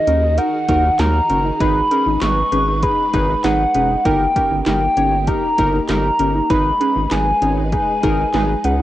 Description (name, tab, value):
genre	synth-pop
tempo	98 BPM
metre	4/4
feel	straight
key	G# minor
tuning	A4 = 439 Hz
part	hollow clarinet-like synth lead	melody	0.0-8.8 s	D#5 to C#6	-18 LUFS	equal	chorus, tape echo
part	soft string machine	sustained chords	0.0-8.8 s	D#3 to B4	-29 LUFS	equal	ensemble chorus
part	warm analog keys	accompaniment	0.1-8.8 s	D#4 to C#5	-23 LUFS	right 1 dB	chorus
part	warbly dusty pluck	arpeggios	0.1-8.8 s	C#4 to D#4	-24 LUFS	right 1 dB	chorus, phaser
part	round analog bass	bass	0.1-8.8 s	E1 to D#2	-20 LUFS	equal	none
part	80s electronic pad drums	drums	0.1-8.8 s	handclaps, hi-hat, kick drum, snare drum	-24 LUFS	equal	cassette tape
room	light reverb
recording	home recording on cassette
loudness	-14 LUFS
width	side -14 dB against mid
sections	0.0-8.8 A section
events	none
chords	0.0 D#m; 1.6 G#m; 4.1 D#/G; 6.5 G#m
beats	0.38 0.99 | 1.60 2.22 2.83 3.44 | 4.05 4.67 5.28 5.89 | 6.50 7.11 7.73 8.34